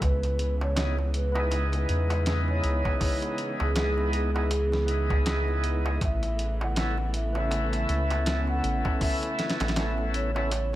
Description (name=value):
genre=trip hop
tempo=80 BPM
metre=4/4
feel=swing 57% on 16ths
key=C# minor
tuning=A4 = 441 Hz
part: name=pure breathy sine lead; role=melody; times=0.0-10.8 s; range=G#4 to F#5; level=-32 LUFS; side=equal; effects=chorus, cassette tape, dub echo
part: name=dark studio string section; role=sustained chords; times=0.0-10.8 s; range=C#3 to B3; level=-36 LUFS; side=equal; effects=none
part: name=soft dub sub bass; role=bass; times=0.0-10.8 s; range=A1 to E2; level=-27 LUFS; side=equal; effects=none
part: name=dusty soul sampler-style drum kit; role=drums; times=0.0-10.7 s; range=hi-hat, kick drum, snare drum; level=-31 LUFS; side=equal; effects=none
part: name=darbuka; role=percussion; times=0.0-10.8 s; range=none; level=-39 LUFS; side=right 2 dB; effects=none
part: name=overdriven tonewheel organ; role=accompaniment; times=0.8-10.5 s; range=B3 to A4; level=-32 LUFS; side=equal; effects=slow rotary speaker, harmonic tremolo, tape echo
room=light reverb, digital ambience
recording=none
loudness=-24 LUFS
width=side -14 dB against mid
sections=0.0-10.8 A section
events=none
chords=0.0 C#m7; 6.0 Aadd9